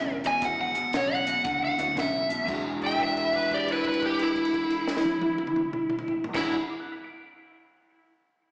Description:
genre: electric blues shuffle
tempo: 117 BPM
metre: 4/4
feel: swing 65% on 8ths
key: E mixolydian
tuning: A4 = 437 Hz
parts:
  - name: overdriven slide guitar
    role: second line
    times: 0.0-6.5 s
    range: E4 to E5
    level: -31 LUFS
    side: equal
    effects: slapback echo, analog delay
  - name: electric guitar through a small old amp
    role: riff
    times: 0.0-6.6 s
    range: E2 to F#4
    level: -32 LUFS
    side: equal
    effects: slapback echo
  - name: vintage muted fingered electric bass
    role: bass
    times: 0.0-6.5 s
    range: E1 to D2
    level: -46 LUFS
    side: equal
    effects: none
  - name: compact cocktail drum kit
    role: drums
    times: 0.2-6.5 s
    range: crash cymbal, hi-hat, kick drum, snare drum, toms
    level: -36 LUFS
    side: equal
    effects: none
  - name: lead guitar through a small cranked amp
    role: melody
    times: 0.3-6.5 s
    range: E4 to G#5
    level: -26 LUFS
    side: equal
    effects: overdrive, slapback echo
  - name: honky-tonk upright piano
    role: accompaniment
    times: 0.4-7.1 s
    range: E2 to D7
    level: -39 LUFS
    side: equal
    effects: slapback echo
room: light reverb, studio ambience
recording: live gig heard through the venue's PA, recital hall reverb, small speaker sound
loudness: -24 LUFS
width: side -34 dB against mid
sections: 0.0-2.5 A section; 2.5-6.6 B section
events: held note 2.5-6.3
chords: 0.0 E7; 2.5 E9

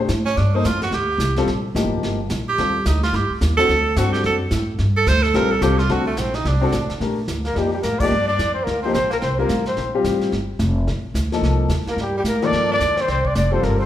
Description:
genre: jazz, small-group swing and bop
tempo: 217 BPM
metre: 4/4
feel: swing 62% on 8ths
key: G minor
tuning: A4 = 442 Hz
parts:
  - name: warm baby grand piano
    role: accompaniment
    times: 0.0-13.9 s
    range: Eb3 to C5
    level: -23 LUFS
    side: left 3 dB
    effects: none
  - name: upright bass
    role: bass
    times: 0.0-13.9 s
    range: F1 to A2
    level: -21 LUFS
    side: equal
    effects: none
  - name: vintage brush drum kit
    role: drums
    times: 0.1-13.9 s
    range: brushed snare drum, crash cymbal, hi-hat, kick drum, snare drum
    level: -29 LUFS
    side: right 1 dB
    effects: none
  - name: clear tenor saxophone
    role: second line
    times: 0.3-13.9 s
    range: G3 to C5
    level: -23 LUFS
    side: right 4 dB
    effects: none
  - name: dark trumpet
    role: melody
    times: 7.5-13.9 s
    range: G4 to D5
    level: -21 LUFS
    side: left 1 dB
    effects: none
room: wet recital hall reverb, RT60 1.4 s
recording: recorded in a church or concert hall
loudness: -17 LUFS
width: side -12 dB against mid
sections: 0.0-7.0 A section; 7.0-13.9 B section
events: tenor saxophone solo 0.0-7.0; band accent 8.0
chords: 0.4 Gm7; 2.6 Ebmaj7; 3.7 D7; 4.8 Gm7; 5.9 D7; 7.0 Gm7; 9.2 C5; 10.3 Gm7; 11.4 Cm7

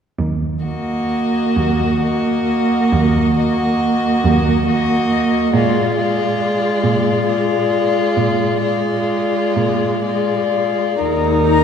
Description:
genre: classical, slow romantic movement for string quartet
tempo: 40-47 BPM (dotted quarters)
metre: 12/8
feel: rubato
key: Eb minor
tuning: A4 = 438 Hz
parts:
  - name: rich cello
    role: bass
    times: 0.2-11.6 s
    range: Eb2 to Bb2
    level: -21 LUFS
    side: right 2 dB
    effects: none
  - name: rich violin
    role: second line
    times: 0.6-11.6 s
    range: F4 to Bb4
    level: -20 LUFS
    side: left 3 dB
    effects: none
  - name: warm viola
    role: accompaniment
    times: 0.6-11.6 s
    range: Ab3 to Eb4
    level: -18 LUFS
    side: right 2 dB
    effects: none
  - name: warm violin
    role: melody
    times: 0.7-11.6 s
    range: D5 to Bb5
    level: -23 LUFS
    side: left 7 dB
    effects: none
room: wet concert hall reverb, RT60 2.4 s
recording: heard from further back in the room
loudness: -14 LUFS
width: side -7 dB against mid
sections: 0.2-11.0 A section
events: none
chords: 0.2 Ebm; 5.5 Bb7; 11.0 Eb5

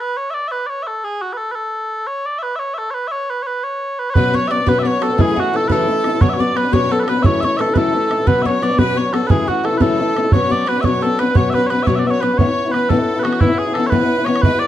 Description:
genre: celtic folk, Celtic jig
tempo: 117 BPM (dotted quarters)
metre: 6/8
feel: straight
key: B dorian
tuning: A4 = 438 Hz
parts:
  - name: mellow small bagpipes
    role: melody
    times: 0.0-14.7 s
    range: E4 to E5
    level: -19 LUFS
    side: right 1 dB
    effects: plate reverb
  - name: bright fiddle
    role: second line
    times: 4.2-14.7 s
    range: E4 to D5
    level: -28 LUFS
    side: left 5 dB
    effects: none
  - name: mandolin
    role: second line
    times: 4.2-12.4 s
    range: F#4 to D5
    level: -26 LUFS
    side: right 5 dB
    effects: none
  - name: fingerpicked swing-style acoustic guitar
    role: accompaniment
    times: 4.2-14.7 s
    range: F#2 to E4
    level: -17 LUFS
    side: left 3 dB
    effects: none
  - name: bodhran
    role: percussion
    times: 4.2-14.5 s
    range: none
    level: -17 LUFS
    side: right 2 dB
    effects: none
room: moderate small room reverb, RT60 0.5 s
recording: dark, warm production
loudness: -15 LUFS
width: side -12 dB against mid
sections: 0.0-4.2 A section; 4.2-12.4 A section; 12.4-14.7 B section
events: none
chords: 0.0 N.C.; 4.2 Bmadd9; 5.2 F#m7; 6.2 Bmadd9; 7.2 F#m7; 8.3 Bmadd9; 9.3 F#m7; 10.3 Bmadd9; 12.4 Aadd9

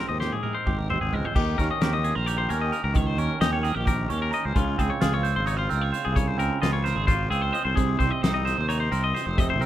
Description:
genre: math rock and midwest emo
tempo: 262 BPM (eighths)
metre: 7/8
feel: straight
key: unclear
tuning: A4 = 440 Hz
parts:
  - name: twangy electric guitar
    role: accompaniment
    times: 0.0-9.7 s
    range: Ab2 to C5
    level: -28 LUFS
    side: right 7 dB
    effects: phaser
  - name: twangy electric guitar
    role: arpeggios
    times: 0.0-9.7 s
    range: F4 to Eb5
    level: -29 LUFS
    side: left 8 dB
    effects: none
  - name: fuzz fingered electric bass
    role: bass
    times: 0.1-9.7 s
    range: F1 to Eb2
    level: -27 LUFS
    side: equal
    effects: overdrive
  - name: loose indie drum kit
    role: drums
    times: 0.2-9.7 s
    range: crash cymbal, hi-hat, kick drum, snare drum, toms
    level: -28 LUFS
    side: equal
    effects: none
room: little or no reverb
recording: rough home demo mix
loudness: -22 LUFS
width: side -12 dB against mid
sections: 0.0-1.3 A section; 1.3-9.7 B section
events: drum fill 0.0-1.3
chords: 0.0 Abmaj9; 1.3 Eb7; 4.6 Dbmaj7; 7.8 Ab (rootless)

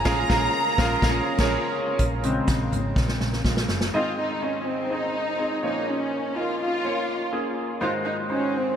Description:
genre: piano-driven pop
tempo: 124 BPM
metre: 4/4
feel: straight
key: Bb minor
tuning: A4 = 441 Hz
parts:
  - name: warm studio violin section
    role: melody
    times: 0.0-8.8 s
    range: C4 to Bb5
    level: -27 LUFS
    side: equal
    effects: none
  - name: clear concert grand piano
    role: accompaniment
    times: 0.0-8.8 s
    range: Ab2 to F5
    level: -27 LUFS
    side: equal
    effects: lush chorus
  - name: percussive tonewheel organ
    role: sustained chords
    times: 0.0-3.9 s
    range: Db3 to F4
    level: -39 LUFS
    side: equal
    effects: none
  - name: vintage muted picked electric bass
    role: bass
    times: 0.1-3.9 s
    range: Gb1 to Bb1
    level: -28 LUFS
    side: equal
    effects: none
  - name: unplugged drum kit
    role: drums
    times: 0.1-3.9 s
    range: crash cymbal, hi-hat, kick drum, snare drum, toms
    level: -26 LUFS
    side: equal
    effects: none
room: wet cathedral reverb, RT60 5.8 s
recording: dreamy mix soaked in reverb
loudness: -22 LUFS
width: side -8 dB against mid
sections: 0.0-2.0 A section; 2.0-3.9 B section; 3.9-8.8 C section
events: band accent 0.1-2.0; grand piano solo 2.0-3.9; drum fill 3.0-3.9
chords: 0.1 Bbm7; 3.9 Ab; 5.6 Bbm; 7.8 Ab7

